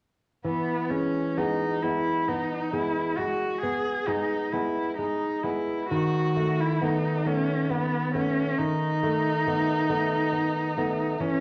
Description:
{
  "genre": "romantic duo for cello and classical guitar",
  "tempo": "43-47 BPM (dotted quarters)",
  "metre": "12/8",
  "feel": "rubato",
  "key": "E major",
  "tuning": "A4 = 440 Hz",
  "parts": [
    { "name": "nylon-string guitar", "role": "accompaniment", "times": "0.4-11.4 s", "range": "D#3 to B3", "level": "-30 LUFS", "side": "equal", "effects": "none" },
    { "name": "rich cello", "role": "melody", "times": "0.5-11.4 s", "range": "B3 to G#4", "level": "-30 LUFS", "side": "equal", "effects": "none" }
  ],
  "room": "moderate large studio reverb, RT60 1.4 s",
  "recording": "none",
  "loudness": "-27 LUFS",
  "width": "mono",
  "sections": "0.4-11.4 A section",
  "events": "none",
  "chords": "0.4 E; 5.9 B7/D#"
}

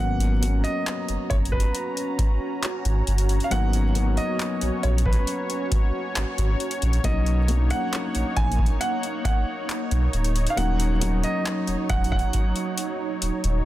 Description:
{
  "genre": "contemporary R&B",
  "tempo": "68 BPM",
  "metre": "4/4",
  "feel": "straight",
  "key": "G# minor",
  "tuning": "A4 = 440 Hz",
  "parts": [
    { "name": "warm baby grand piano", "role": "melody", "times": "0.0-13.2 s", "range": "B4 to G#5", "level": "-30 LUFS", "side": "right 4 dB", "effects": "digital delay" },
    { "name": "felt-muted upright piano", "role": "accompaniment", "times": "0.0-13.7 s", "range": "F#3 to D#4", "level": "-31 LUFS", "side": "left 5 dB", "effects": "none" },
    { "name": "warm analog pad", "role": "sustained chords", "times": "0.0-13.7 s", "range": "F#3 to A#5", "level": "-30 LUFS", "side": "right 1 dB", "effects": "chorus" },
    { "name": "warm sub bass", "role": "bass", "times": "0.0-13.6 s", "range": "D1 to B1", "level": "-22 LUFS", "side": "equal", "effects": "none" },
    { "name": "booming analog drum machine", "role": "drums", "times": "0.2-13.6 s", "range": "handclaps, hi-hat, kick drum", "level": "-26 LUFS", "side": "equal", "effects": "none" }
  ],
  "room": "little or no reverb",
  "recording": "dense, heavily limited modern master",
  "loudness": "-21 LUFS",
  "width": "side -15 dB against mid",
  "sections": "0.0-13.7 A section",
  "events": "drum fill 12.3-13.7",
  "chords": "0.0 G#m11; 7.0 Bmaj9; 10.6 D#m7"
}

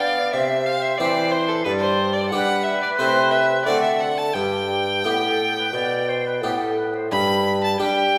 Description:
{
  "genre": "classical, baroque-style sonata movement with continuo",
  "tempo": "89 BPM",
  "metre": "4/4",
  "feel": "rubato",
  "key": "G major",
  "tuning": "A4 = 440 Hz",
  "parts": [
    { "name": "rich violin", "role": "melody", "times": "0.0-8.2 s", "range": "A4 to B5", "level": "-25 LUFS", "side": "equal", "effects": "none" },
    { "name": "silver concert flute", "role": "second line", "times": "0.0-8.2 s", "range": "G4 to B5", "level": "-28 LUFS", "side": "equal", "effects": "none" },
    { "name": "harpsichord", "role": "accompaniment", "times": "0.0-8.2 s", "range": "G2 to G4", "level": "-29 LUFS", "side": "equal", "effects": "none" },
    { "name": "mellow bassoon", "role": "bass", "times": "0.0-8.2 s", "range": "G2 to B3", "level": "-25 LUFS", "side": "equal", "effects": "none" }
  ],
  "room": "wet recital hall reverb, RT60 1.4 s",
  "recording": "recorded in a church or concert hall",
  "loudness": "-21 LUFS",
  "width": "mono",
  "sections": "0.0-7.1 A section; 7.1-8.2 B section",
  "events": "none",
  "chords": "0.3 C; 1.7 G; 3.0 Am/C; 3.7 D7; 4.4 G; 7.1 G5"
}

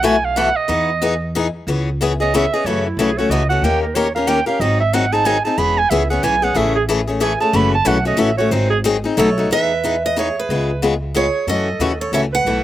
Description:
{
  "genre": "acoustic string swing (jazz manouche)",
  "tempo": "184 BPM",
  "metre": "3/4",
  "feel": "swing 60% on 8ths",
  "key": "C# minor, E major from 9.5 s",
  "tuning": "A4 = 441 Hz",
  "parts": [
    { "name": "warm clarinet", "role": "second line", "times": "0.0-12.6 s", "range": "E4 to B5", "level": "-19 LUFS", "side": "right 5 dB", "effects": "none" },
    { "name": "picked steel-string acoustic guitar", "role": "accompaniment", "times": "0.0-12.6 s", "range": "B2 to A#4", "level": "-18 LUFS", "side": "left 4 dB", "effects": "none" },
    { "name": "upright bass", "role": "bass", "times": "0.0-12.6 s", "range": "E1 to F#2", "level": "-22 LUFS", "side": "equal", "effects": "none" },
    { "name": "picked steel-string acoustic guitar", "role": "melody", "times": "9.2-12.6 s", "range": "B4 to F#5", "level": "-20 LUFS", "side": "right 2 dB", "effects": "none" }
  ],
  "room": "little or no reverb",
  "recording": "recorded outdoors, with no room sound",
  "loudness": "-15 LUFS",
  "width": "side -13 dB against mid",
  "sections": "0.0-1.7 A section; 1.7-9.5 A section; 9.5-12.6 B section",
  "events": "clarinet solo 0.0-9.5",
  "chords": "0.0 B7sus4; 0.7 Emaj7; 1.7 C#m7; 2.7 F#m7; 3.6 D#7; 4.6 G#7; 5.6 E6; 6.6 Amaj7; 7.5 F#m7; 8.5 G#7; 9.2 B7; 9.5 Emaj7; 10.5 C#7; 11.5 F#m7"
}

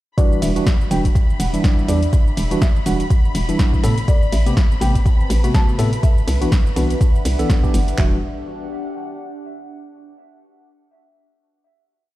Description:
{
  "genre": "deep house",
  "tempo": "123 BPM",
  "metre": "4/4",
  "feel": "swing 57% on 16ths",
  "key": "E minor",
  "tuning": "A4 = 440 Hz",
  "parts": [
    { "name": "marimba with medium mallets", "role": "melody", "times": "0.2-8.2 s", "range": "D5 to A5", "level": "-30 LUFS", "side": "left 2 dB", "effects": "analog delay" },
    { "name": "bright tine electric piano", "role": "stabs", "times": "0.2-8.2 s", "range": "C3 to A4", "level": "-23 LUFS", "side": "right 1 dB", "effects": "medium stereo tremolo, sidechain pumping, tape echo" },
    { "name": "deep house drum kit", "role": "drums", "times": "0.2-8.1 s", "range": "handclaps, kick drum", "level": "-16 LUFS", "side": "equal", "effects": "overdrive" },
    { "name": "deep house drum kit", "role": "drums", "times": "0.2-8.0 s", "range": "hi-hat, ride cymbal, shaker, snare drum", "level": "-28 LUFS", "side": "equal", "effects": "overdrive" },
    { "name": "warbly tape-like pad", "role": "texture", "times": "1.2-9.9 s", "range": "C4 to A5", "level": "-31 LUFS", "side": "right 1 dB", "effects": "chorus, built-in reverb, phaser, sidechain pumping" },
    { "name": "warm studio violin section", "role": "texture", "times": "0.2-8.0 s", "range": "B5", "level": "-33 LUFS", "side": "left 3 dB", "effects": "sidechain pumping" },
    { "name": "hollow knocking FM bass", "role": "bass", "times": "0.4-8.2 s", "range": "E1 to A2", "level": "-19 LUFS", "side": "equal", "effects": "none" }
  ],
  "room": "little or no reverb",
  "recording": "played on a big sound system in a bare room, stone room reverb",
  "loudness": "-15 LUFS",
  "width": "side -16 dB against mid",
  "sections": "0.2-8.0 drop; 8.0-9.9 final chord",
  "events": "drop 0.2-8.0",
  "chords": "0.2 Em9; 3.8 Am9; 6.0 Cmaj9#11; 8.0 Em9"
}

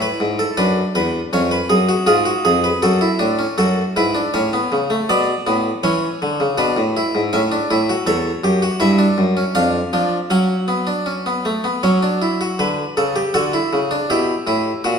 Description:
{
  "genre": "classical, baroque-style 3-part fugue for harpsichord",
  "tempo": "80 BPM",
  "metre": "3/4",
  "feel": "straight",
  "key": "F# minor, B minor from 8.1 s",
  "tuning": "A4 = 440 Hz",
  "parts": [
    { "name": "harpsichord", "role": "solo", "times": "0.0-15.0 s", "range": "E2 to F#5", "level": "-16 LUFS", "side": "equal", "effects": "none" }
  ],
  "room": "wet stone room reverb, RT60 1.4 s",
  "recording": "heard from further back in the room",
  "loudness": "-16 LUFS",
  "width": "side -6 dB against mid",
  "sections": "0.0-3.6 A section; 3.6-12.6 B section; 12.6-15.0 C section",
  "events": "none",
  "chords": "0.0 N.C.; 0.6 Bm/F#; 1.3 C#7/E#; 2.8 F#m; 5.1 Bm7; 5.8 E5; 7.3 A; 8.1 C#dim/E; 9.6 Dm/F; 10.3 F#sus4; 11.8 F#5; 12.6 Bm; 14.1 Em/B"
}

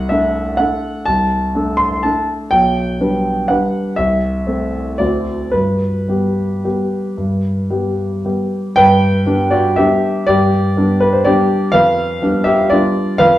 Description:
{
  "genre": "classical, piano waltz",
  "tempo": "106-129 BPM",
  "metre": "3/4",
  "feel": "rubato",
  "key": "G major",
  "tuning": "A4 = 435 Hz",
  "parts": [
    { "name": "warm grand piano", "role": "solo", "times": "0.0-13.4 s", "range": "B1 to C6", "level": "-13 LUFS", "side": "equal", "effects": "none" }
  ],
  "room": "moderate large studio reverb, RT60 0.8 s",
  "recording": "heard from further back in the room",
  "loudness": "-13 LUFS",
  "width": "side -14 dB against mid",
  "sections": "0.0-8.8 A section; 8.8-13.4 A section",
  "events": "none",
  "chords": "0.0 D7/C; 2.5 G/B; 4.0 Am/C; 5.0 D7; 5.5 G; 11.8 G7/F"
}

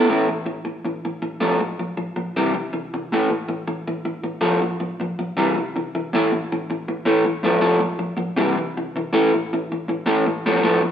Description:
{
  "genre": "rock",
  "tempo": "160 BPM",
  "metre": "4/4",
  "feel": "straight",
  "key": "A minor",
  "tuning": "A4 = 439 Hz",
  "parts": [
    { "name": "electric guitar through a small old amp", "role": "solo", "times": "0.0-10.9 s", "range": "A2 to A3", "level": "-19 LUFS", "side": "equal", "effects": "spring reverb" }
  ],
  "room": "wet stone room reverb, RT60 1.3 s",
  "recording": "band playing live in one room",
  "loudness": "-20 LUFS",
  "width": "side -9 dB against mid",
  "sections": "0.1-6.1 A section; 6.1-10.9 B section",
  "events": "none",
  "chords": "0.1 A5; 1.4 F/A; 2.4 C; 3.1 A5; 4.4 F/A; 5.4 C; 6.1 A5; 7.4 F/A; 8.4 C; 9.1 A5"
}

